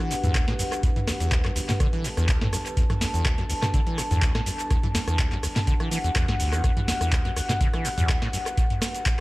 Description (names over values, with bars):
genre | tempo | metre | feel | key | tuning
acid house | 124 BPM | 4/4 | swing 53% on 16ths | E minor | A4 = 440 Hz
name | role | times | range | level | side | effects
dark analog pad | sustained chords | 0.0-9.2 s | D4 to A5 | -31 LUFS | left 1 dB | chorus, sidechain pumping
liquid acid bass | riff | 0.0-8.4 s | D2 to E3 | -27 LUFS | equal | overdrive, lush chorus, vintage 12-bit sampler grit, sidechain pumping, dub echo
booming analog drum machine | drums | 0.1-9.2 s | cabasa, handclaps, hi-hat, rim click, snare drum, toms | -28 LUFS | equal | studio reverb, dub echo
electronic kick drum | drums | 0.3-9.2 s | none | -25 LUFS | equal | studio reverb
room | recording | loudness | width
little or no reverb | echo-heavy mix | -22 LUFS | side -20 dB against mid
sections
0.0-9.2 A section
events
none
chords
0.0 Em7